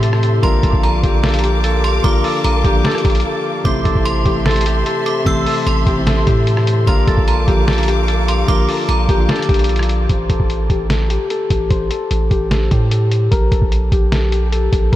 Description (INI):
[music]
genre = hip hop, trap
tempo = 149 BPM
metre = 4/4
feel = half-time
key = A phrygian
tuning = A4 = 439 Hz
[part]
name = Celtic harp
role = melody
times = 0.0-15.0 s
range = G4 to C5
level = -20 LUFS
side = left 3 dB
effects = low-pass filter, analog delay
[part]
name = soft electric-piano-like synth keys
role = accompaniment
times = 0.0-10.1 s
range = C3 to F4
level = -23 LUFS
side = left 2 dB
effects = chorus
[part]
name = dark symphonic string section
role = sustained chords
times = 0.0-10.1 s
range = A4 to D6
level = -26 LUFS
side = left 2 dB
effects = none
[part]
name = long sustained 808-style bass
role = bass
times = 0.0-15.0 s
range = A1 to A2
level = -16 LUFS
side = equal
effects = none
[part]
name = lo-fi sampler-style drum kit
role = drums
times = 0.0-15.0 s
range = hi-hat, kick drum, rim click, snare drum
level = -19 LUFS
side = equal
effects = none
[part]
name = metallic FM bell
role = second line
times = 0.4-9.3 s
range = Bb5 to E6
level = -25 LUFS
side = right 4 dB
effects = chorus, analog delay
[sound]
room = light reverb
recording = none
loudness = -13 LUFS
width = side -14 dB against mid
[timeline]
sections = 0.0-10.1 A section; 10.1-15.0 B section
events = break 3.2-3.7; filter sweep on harp 10.1-15.0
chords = 0.4 Bb; 3.7 Am; 6.9 Bb; 10.1 Am7; 13.3 Gmadd9/Bb